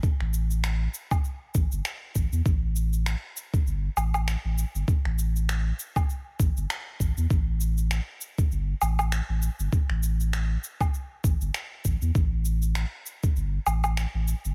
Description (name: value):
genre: organic downtempo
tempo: 99 BPM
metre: 4/4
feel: swing 57% on 16ths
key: unclear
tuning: A4 = 439 Hz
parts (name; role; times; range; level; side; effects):
- electronic cabasa, finger snaps and woodblock; drums; 0.0-14.5 s; none; -35 LUFS; equal; overdrive, small room ambience
- electronic kick drum; drums; 0.0-13.3 s; none; -27 LUFS; equal; small room ambience
- warm sub bass; bass; 0.2-14.5 s; G1 to E2; -28 LUFS; equal; none
room: little or no reverb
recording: none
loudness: -27 LUFS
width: mono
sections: 0.0-14.5 A section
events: none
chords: none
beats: | 0.03 0.64 1.24 1.85 | 2.46 3.06 3.67 4.27 | 4.88 5.49 6.09 6.70 | 7.30 7.91 8.52 9.12 | 9.73 10.33 10.94 11.55 | 12.15 12.76 13.36 13.97